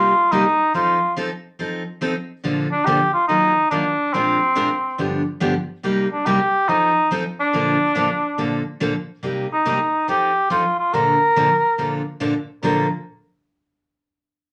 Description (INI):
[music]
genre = country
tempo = 141 BPM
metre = 4/4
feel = swing 66% on 8ths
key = Bb major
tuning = A4 = 439 Hz
[part]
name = mellow cor anglais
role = melody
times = 0.0-12.9 s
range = C4 to Bb4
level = -20 LUFS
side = equal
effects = none
[part]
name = picked steel-string acoustic guitar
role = accompaniment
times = 0.0-12.9 s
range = G2 to Bb4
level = -25 LUFS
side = equal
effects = none
[sound]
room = wet studio reverb, RT60 0.5 s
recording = none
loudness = -20 LUFS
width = mono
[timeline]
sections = 0.0-9.2 A section; 9.2-12.6 B section; 12.6-14.3 C section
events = none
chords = 0.0 Cm7; 0.7 F7; 2.4 Bbmaj7; 3.3 Ebmadd9; 4.1 Bb7; 5.0 G7; 5.8 Cm7; 6.7 F7; 7.5 Bbmaj7; 9.2 Cm7; 10.1 F7; 10.9 Bbmaj7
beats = 0.32 | 0.75 1.17 1.59 2.02 | 2.44 2.87 3.29 3.71 | 4.14 4.56 4.99 5.41 | 5.83 6.26 6.68 7.11 | 7.53 7.96 8.38 8.81 | 9.23 9.66 10.08 10.51 | 10.93 11.36 11.78 12.21 | 12.63